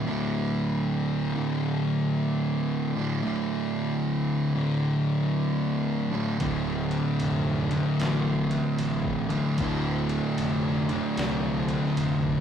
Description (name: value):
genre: stoner and doom metal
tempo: 76 BPM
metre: 4/4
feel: swing 64% on 8ths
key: D minor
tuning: A4 = 439 Hz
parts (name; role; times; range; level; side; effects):
- fuzz guitar; riff; 0.0-12.4 s; D2 to D3; -26 LUFS; right 3 dB; distortion
- thick fuzz guitar; riff; 0.0-12.4 s; D2 to D3; -30 LUFS; left 5 dB; distortion
- fuzz fingered electric bass; bass; 6.4-12.4 s; D1 to C2; -33 LUFS; left 1 dB; overdrive
- trip hop sampler-style drum kit; drums; 6.4-12.4 s; kick drum, ride cymbal, snare drum; -36 LUFS; left 1 dB; none
room: light reverb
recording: rough rehearsal-room recording, warm saturation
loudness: -24 LUFS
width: side -8 dB against mid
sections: 0.0-12.4 A section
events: none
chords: 0.0 Dm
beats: | 0.07 0.86 1.65 2.44 | 3.23 4.03 4.82 5.61 | 6.40 7.20 7.99 8.79 | 9.58 10.38 11.18 11.97